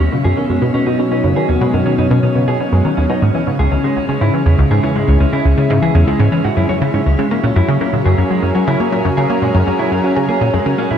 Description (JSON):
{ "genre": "ambient, sequencer-driven space music", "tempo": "121 BPM", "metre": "4/4", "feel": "straight", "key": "C# dorian", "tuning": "A4 = 442 Hz", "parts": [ { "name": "lush unison pad", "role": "sustained chords", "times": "0.0-11.0 s", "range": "B2 to A#4", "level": "-17 LUFS", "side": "equal", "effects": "chorus" }, { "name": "mellow electric guitar", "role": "arpeggios", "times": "0.0-11.0 s", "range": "C#3 to C#5", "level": "-20 LUFS", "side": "right 1 dB", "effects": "auto-pan, low-pass filter, tape echo" }, { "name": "tight sequenced synth", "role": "riff", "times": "0.0-11.0 s", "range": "C#2 to A#3", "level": "-15 LUFS", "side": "equal", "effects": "chorus, phaser, tape echo" } ], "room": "moderate shimmer reverb, RT60 7.7 s", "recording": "cassette tape", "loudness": "-12 LUFS", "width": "side -8 dB against mid", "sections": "0.0-11.0 A section", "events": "none", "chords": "0.0 B; 3.2 C#m; 7.2 F#", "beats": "0.25 0.74 | 1.24 1.73 2.23 2.73 | 3.22 3.72 4.21 4.71 | 5.21 5.70 6.20 6.69 | 7.19 7.68 8.18 8.68 | 9.17 9.67 10.16 10.66" }